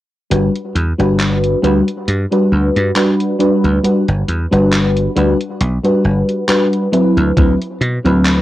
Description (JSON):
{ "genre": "vaporwave", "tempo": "68 BPM", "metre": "4/4", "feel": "swing 55% on 16ths", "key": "G major", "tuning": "A4 = 440 Hz", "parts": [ { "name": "mellow FM electric piano", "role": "accompaniment", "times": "0.3-8.4 s", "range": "F#3 to B4", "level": "-14 LUFS", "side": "equal", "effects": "analog chorus, cassette tape, tape echo" }, { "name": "dry thumbed slap bass", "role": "bass", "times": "0.3-8.4 s", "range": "G1 to B2", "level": "-16 LUFS", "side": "equal", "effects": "tube saturation" }, { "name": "gated 80s digital drum machine", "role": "drums", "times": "0.3-8.4 s", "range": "handclaps, hi-hat", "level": "-21 LUFS", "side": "equal", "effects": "gated reverb, vintage 12-bit sampler grit, cassette tape" }, { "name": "electronic kick drum", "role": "drums", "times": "7.4-7.6 s", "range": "none", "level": "-12 LUFS", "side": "equal", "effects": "vintage 12-bit sampler grit, cassette tape" } ], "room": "moderate studio reverb, RT60 0.6 s", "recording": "home recording on cassette", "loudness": "-12 LUFS", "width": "side -15 dB against mid", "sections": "0.3-8.4 A section", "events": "none", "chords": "0.3 Gmaj7; 6.9 D13" }